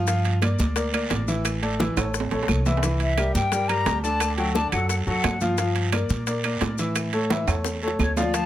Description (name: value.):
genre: latin, salsa.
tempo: 174 BPM.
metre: 4/4.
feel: straight.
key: unclear.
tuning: A4 = 440 Hz.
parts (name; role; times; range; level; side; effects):
bright concert grand piano; accompaniment; 0.0-8.5 s; D3 to F5; -26 LUFS; left 1 dB; none.
upright bass; bass; 0.0-8.5 s; A1 to Bb2; -26 LUFS; equal; none.
bongos; percussion; 0.1-8.5 s; none; -33 LUFS; left 9 dB; none.
congas; percussion; 0.1-8.5 s; none; -31 LUFS; equal; none.
guiro; percussion; 0.1-8.5 s; none; -36 LUFS; right 6 dB; none.
maracas; percussion; 0.1-8.5 s; none; -37 LUFS; left 8 dB; none.
timbales; percussion; 0.1-8.5 s; none; -31 LUFS; right 9 dB; none.
claves; percussion; 0.4-8.2 s; none; -34 LUFS; right 8 dB; none.
silver concert flute; melody; 3.0-5.4, 8.0-8.5 s; C#5 to Bb5; -26 LUFS; left 3 dB; none.
room: light reverb.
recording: close, detailed microphones.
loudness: -21 LUFS.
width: side -12 dB against mid.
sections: 0.0-8.3 A section.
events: drum fill 2.0-2.8, 7.3-8.3.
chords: 0.1 Gm7; 1.5 Asus4; 2.1 A; 2.8 C7; 4.2 D; 5.6 Gm7; 7.0 A.